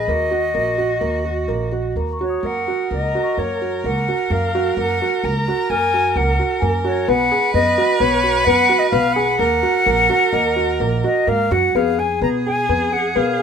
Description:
contemporary instrumental, chamber music in an uneven meter; 129 BPM; 5/4; straight; A4 = 438 Hz
bright reedy concert flute; melody; 0.0-13.4 s; Db5 to Bb5; -20 LUFS; left 2 dB
clear viola; second line; 0.0-13.4 s; Gb4 to B4; -24 LUFS; right 3 dB
felt-muted upright piano; arpeggios; 0.0-13.4 s; Bb3 to Ab4; -21 LUFS; right 1 dB
upright bass; bass; 0.0-13.4 s; Bb1 to Cb3; -24 LUFS; right 1 dB
large celesta; texture; 2.0-13.4 s; Ab4 to F6; -28 LUFS; left 7 dB
moderate studio reverb, RT60 0.6 s; minimal, uncompressed stereo recording; -16 LUFS; side -7 dB against mid
0.0-2.4 A section; 2.4-11.8 B section; 11.8-13.4 A section
0.1 Ebm7; 2.4 Gb; 7.1 Bsus2; 9.4 Ebm; 11.8 Fdim

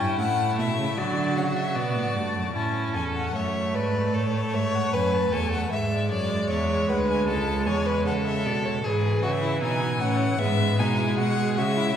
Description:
classical, baroque-style fugue for string quartet; 77 BPM; 4/4; straight; A major; A4 = 440 Hz
rich violin; melody; 0.0-12.0 s; B4 to A5; -30 LUFS; left 6 dB
rich violin; second line; 0.0-12.0 s; B3 to E5; -28 LUFS; left 1 dB
clear viola; accompaniment; 0.0-11.9 s; E3 to C#4; -28 LUFS; right 2 dB
clear cello; bass; 0.0-12.0 s; C#2 to D3; -27 LUFS; right 2 dB
wet concert hall reverb, RT60 2.0 s; heard from further back in the room; -22 LUFS; side -9 dB against mid
0.0-2.6 A section; 2.6-12.0 B section
0.0 A7; 1.0 D; 2.6 A; 5.7 E7; 7.3 A/C#; 8.8 E/G#

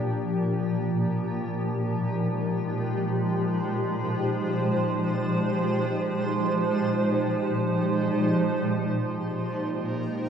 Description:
ambient; free time; A4 = 439 Hz
granular cloud pad; sustained chords; 0.0-10.3 s; Bb2 to C5; -24 LUFS; equal; built-in reverb
felt-muted upright piano; arpeggios; 9.3-10.3 s; Ab4 to C5; -48 LUFS; right 1 dB
analog drone; drone; 9.6-10.3 s; Bb3 to F4; -36 LUFS; right 4 dB; chorus
backwards swelling texture; texture; 9.3-10.3 s; Bb4 to Bb5; -48 LUFS; equal; built-in reverb
wet scoring stage reverb, RT60 2.0 s; dark, warm production; -24 LUFS; side -8 dB against mid
0.0-9.3 A section
0.1 Fm9/Bb; 9.3 Bb7sus4

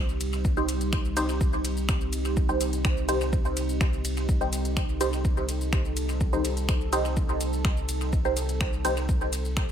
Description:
dub techno; 125 BPM; 4/4; straight; A4 = 439 Hz
deep dark ambient pad; sustained chords; 0.0-9.7 s; G3 to A4; -33 LUFS; right 2 dB; chorus, built-in reverb, vintage 12-bit sampler grit, sidechain pumping
warm sub bass; bass; 0.0-9.7 s; C2; -30 LUFS; equal; sidechain pumping
deep house drum kit; drums; 0.1-9.7 s; finger snaps, hi-hat, ride cymbal, shaker; -34 LUFS; left 1 dB; studio reverb, dub echo
electronic kick drum; drums; 0.4-9.7 s; -26 LUFS; equal; studio reverb
filtered dub chord stab; stabs; 0.6-8.9 s; Eb4 to C5; -30 LUFS; right 1 dB; phaser, sidechain pumping, dub echo
light reverb, digital ambience; echo-heavy mix; -24 LUFS; side -9 dB against mid
0.0-9.7 A section
0.0 Cm

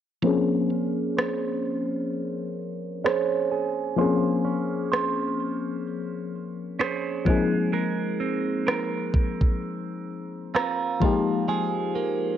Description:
contemporary R&B; 64 BPM; 4/4; swing 58% on 16ths; A4 = 445 Hz
FM electric piano with auto-pan; accompaniment; 0.2-12.4 s; F3 to Ab4; -26 LUFS; left 5 dB; low-pass filter, cassette tape
direct-recorded clean electric guitar; arpeggios; 0.2-12.4 s; F3 to C5; -28 LUFS; right 8 dB; phaser, low-pass filter, cassette tape
smooth R&B drum kit; drums; 1.2-11.3 s; kick drum, rim click; -25 LUFS; equal
moderate spring reverb, RT60 2.3 s; home recording on cassette; -23 LUFS; side -10 dB against mid
0.2-12.4 A section
filter sweep 0.2-12.4
0.2 Bbm9; 7.3 Ab69; 11.0 Fm11

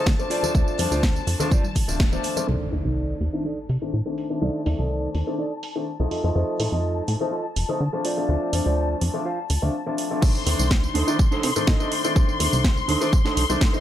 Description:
filtered disco house; 124 BPM; 4/4; straight; C dorian; A4 = 441 Hz
clear grand piano; accompaniment; 0.0-13.8 s; Eb3 to D5; -27 LUFS; left 2 dB; phaser, sidechain pumping, low-pass filter
rich studio string section; sustained chords; 0.0-13.8 s; A5 to C6; -32 LUFS; left 6 dB; sidechain pumping, low-pass filter
plucky analog bass; bass; 0.0-13.6 s; D1 to D3; -24 LUFS; equal; sidechain pumping, low-pass filter
electronic kick drum; drums; 0.1-2.1, 10.2-13.7 s; -20 LUFS; equal
house drum kit; drums; 0.1-13.8 s; crash cymbal, hi-hat, snare drum, tambourine; -29 LUFS; right 2 dB; sidechain pumping on perc, low-pass filter on perc, sidechain pumping on hats, low-pass filter on hats, low-pass filter on snare, sidechain pumping on cymbals, low-pass filter on cymbals, low-pass filter on room
maracas and congas; percussion; 0.1-2.5 s; -33 LUFS; equal; sidechain pumping on perc, low-pass filter on perc
mellow electric guitar; riff; 0.3-13.8 s; D4 to F5; -30 LUFS; right 4 dB; spring reverb, sidechain pumping, low-pass filter
impact; sound effects; 2.5-4.4 s; -35 LUFS; equal
little or no reverb; -20 LUFS; side -12 dB against mid
0.0-2.5 A section; 2.5-10.2 B section; 10.2-13.8 C section
band accent 2.0; impact 2.5-4.4; filter sweep on drum 2.5-10.2; filter sweep 2.5-10.2; drop 10.2-13.8
0.3 Dm7; 2.5 Cm69; 6.1 F7; 8.0 Dm7; 10.2 Cm69

